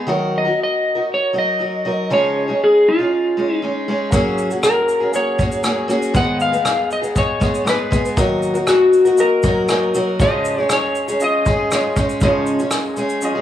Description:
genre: acoustic pop.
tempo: 119 BPM.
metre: 4/4.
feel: straight.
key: unclear.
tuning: A4 = 441 Hz.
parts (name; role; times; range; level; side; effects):
picked steel-string acoustic guitar; accompaniment; 0.0-13.4 s; G#2 to A#4; -20 LUFS; equal; none.
electric slide guitar; melody; 0.4-11.9 s; E#4 to F#5; -17 LUFS; left 1 dB; none.
clear baby grand piano; accompaniment; 4.1-13.4 s; A#3 to F#5; -25 LUFS; left 4 dB; none.
vintage brush drum kit; drums; 4.1-13.3 s; kick drum, rim click, shaker; -21 LUFS; equal; none.
room: moderate spring reverb, RT60 2.4 s.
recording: small room ambience.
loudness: -15 LUFS.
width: side -11 dB against mid.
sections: 0.0-12.2 A section; 12.2-13.4 B section.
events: none.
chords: 0.1 D#m; 2.1 C#add9; 4.1 F#add9; 6.2 G#m; 8.2 D#m; 10.2 C#add9.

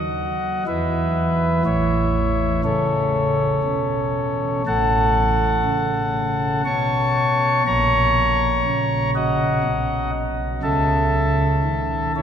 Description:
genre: classical, chorale-style piece for pipe organ.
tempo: 60 BPM.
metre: 3/4.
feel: rubato.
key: A major.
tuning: A4 = 442 Hz.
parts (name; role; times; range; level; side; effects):
chamber organ, principal; solo; 0.0-12.2 s; A1 to C#6; -18 LUFS; equal; none.
room: wet cathedral reverb, RT60 6.7 s.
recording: heard from further back in the room.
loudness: -18 LUFS.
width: side -8 dB against mid.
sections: 0.0-12.2 A section.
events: none.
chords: 0.0 D#m; 0.7 E5; 1.7 A; 4.7 F#m/A; 7.7 F#/A#; 9.6 B; 10.6 A/C#.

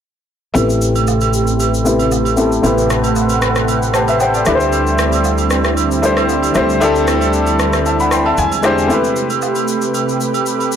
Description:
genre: amapiano.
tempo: 115 BPM.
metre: 4/4.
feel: straight.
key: A dorian.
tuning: A4 = 443 Hz.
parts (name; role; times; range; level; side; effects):
clear grand piano; accompaniment; 0.5-10.8 s; G#3 to C6; -16 LUFS; left 3 dB; low-pass filter.
lush unison pad; sustained chords; 0.6-10.8 s; C3 to F#5; -19 LUFS; right 3 dB; chorus, low-pass filter.
upright bass; bass; 0.6-8.9 s; A1 to E2; -20 LUFS; equal; none.
electronic shaker and rim click; drums; 0.6-10.8 s; none; -22 LUFS; equal; soft clipping on snare.
agogo bells and woodblock; percussion; 0.6-10.7 s; none; -23 LUFS; right 12 dB; none.
room: light reverb, studio reverb.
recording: blown-out, overdriven recording, overdrive.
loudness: -12 LUFS.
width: side -8 dB against mid.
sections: 0.6-8.9 A section; 8.9-10.8 B section.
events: filter sweep 0.6-8.9; grand piano fill 3.7-4.7, 8.1-8.9.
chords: 0.6 Am9; 4.5 D9sus4; 8.4 E7alt; 8.9 Am9.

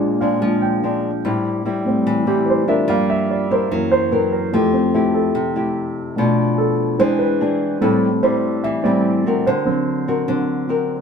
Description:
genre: bossa nova.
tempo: 146 BPM.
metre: 4/4.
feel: straight.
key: unclear.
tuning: A4 = 437 Hz.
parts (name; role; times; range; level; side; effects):
nylon-string guitar; accompaniment; 0.0-11.0 s; A2 to Bb4; -20 LUFS; left 3 dB; none.
warm concert grand piano; accompaniment; 0.0-11.0 s; F2 to G5; -18 LUFS; right 1 dB; none.
room: moderate studio reverb, RT60 0.9 s.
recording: band playing live in one room.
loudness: -16 LUFS.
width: side -6 dB against mid.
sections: 0.0-11.0 A section.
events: grand piano solo 0.0-11.0.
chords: 0.0 Bb9; 1.2 Am7; 2.9 Gm7; 3.7 F#7#11; 4.5 Fmaj9; 6.2 Bm7b5; 7.0 E7b13; 7.8 Am7; 9.5 Daug7.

